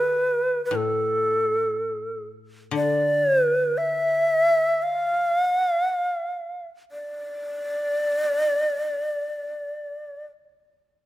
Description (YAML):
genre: japanese traditional, Japanese chamber music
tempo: free time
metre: none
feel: none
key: D kumoi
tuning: A4 = 440 Hz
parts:
  - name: breathy bright long shakuhachi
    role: melody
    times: 0.0-10.3 s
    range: A4 to F5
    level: -22 LUFS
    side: equal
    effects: none
  - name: koto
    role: accompaniment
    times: 0.0-5.9 s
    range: A2 to D3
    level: -32 LUFS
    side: left 5 dB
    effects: none
room: light reverb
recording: close, detailed microphones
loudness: -21 LUFS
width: side -15 dB against mid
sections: 0.0-11.1 A section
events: none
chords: none